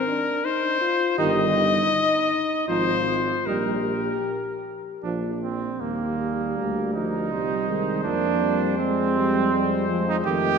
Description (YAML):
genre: classical, brass quintet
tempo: 79 BPM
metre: 3/4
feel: uneven beats, rubato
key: Eb major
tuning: A4 = 440 Hz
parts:
  - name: warm trumpet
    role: melody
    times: 0.0-10.6 s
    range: G4 to Eb5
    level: -26 LUFS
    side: left 3 dB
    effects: none
  - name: dark French horn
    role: accompaniment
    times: 0.0-10.6 s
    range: Eb3 to G4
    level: -28 LUFS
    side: left 4 dB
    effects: none
  - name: warm trumpet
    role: second line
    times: 1.2-10.6 s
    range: Bb3 to G4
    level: -27 LUFS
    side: right 6 dB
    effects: none
  - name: mellow trombone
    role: accompaniment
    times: 1.2-10.6 s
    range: Eb3 to Bb3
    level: -30 LUFS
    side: right 3 dB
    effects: none
  - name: warm tuba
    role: bass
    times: 1.2-10.6 s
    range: G1 to F2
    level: -28 LUFS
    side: right 2 dB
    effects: none
room: wet concert hall reverb, RT60 1.9 s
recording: none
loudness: -21 LUFS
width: side -6 dB against mid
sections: 0.0-5.8 A section; 5.8-10.6 B section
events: none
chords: 0.0 Ab (rootless); 1.2 Eb/G; 2.7 Fm7/Ab; 3.5 Eb/Bb (rootless); 5.0 Bb; 5.8 Eb; 7.3 Cm; 8.1 Fm